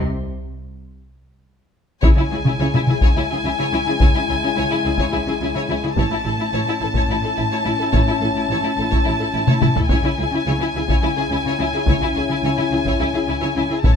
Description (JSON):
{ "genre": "cinematic, epic orchestral film score", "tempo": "213 BPM (eighths)", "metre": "7/8", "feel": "straight", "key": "C# minor", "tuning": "A4 = 440 Hz", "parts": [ { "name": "mellow French horn section", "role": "sustained chords", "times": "0.0-14.0 s", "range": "G#3 to E4", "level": "-26 LUFS", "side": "left 6 dB", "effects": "none" }, { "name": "rich chamber violin section", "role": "melody", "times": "2.0-14.0 s", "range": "G#5 to A5", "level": "-24 LUFS", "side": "left 3 dB", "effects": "none" }, { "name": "rich symphonic violin section", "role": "second line", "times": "2.0-13.9 s", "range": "E4 to C#5", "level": "-28 LUFS", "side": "left 4 dB", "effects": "none" }, { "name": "warm symphonic viola section", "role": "accompaniment", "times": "2.0-13.9 s", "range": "E4", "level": "-27 LUFS", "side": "left 1 dB", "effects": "none" }, { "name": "mellow tuba", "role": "bass", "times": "2.0-13.9 s", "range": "A1 to C#2", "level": "-32 LUFS", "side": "right 5 dB", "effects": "none" }, { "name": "warm symphonic cello section", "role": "bass", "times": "2.0-13.9 s", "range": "A2 to C#3", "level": "-26 LUFS", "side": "equal", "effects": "none" }, { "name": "warm symphonic double bass section", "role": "bass", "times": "2.0-13.9 s", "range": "A1 to C#2", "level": "-29 LUFS", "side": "right 2 dB", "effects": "none" }, { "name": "taiko ensemble", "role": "drums", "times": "2.0-14.0 s", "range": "none", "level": "-18 LUFS", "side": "equal", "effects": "none" } ], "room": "light reverb", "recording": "close, detailed microphones", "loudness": "-17 LUFS", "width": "side -7 dB against mid", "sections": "0.0-2.0 A section; 2.0-14.0 B section", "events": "break 0.1-2.0; drum fill 1.6-2.0, 9.5-9.9", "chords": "0.1 N.C.; 2.0 C#m; 6.0 A; 9.9 C#m", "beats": "| 0.06 0.34 0.62 0.91 1.19 1.47 1.75 | 2.03 2.31 2.59 2.87 3.15 3.43 3.71 | 3.99 4.28 4.56 4.84 5.12 5.40 5.68 | 5.96 6.24 6.52 6.80 7.09 7.37 7.65 | 7.93 8.21 8.49 8.77 9.05 9.34 9.62 | 9.90 10.18 10.46 10.74 11.02 11.30 11.59 | 11.87 12.15 12.43 12.71 12.99 13.27 13.55 | 13.84" }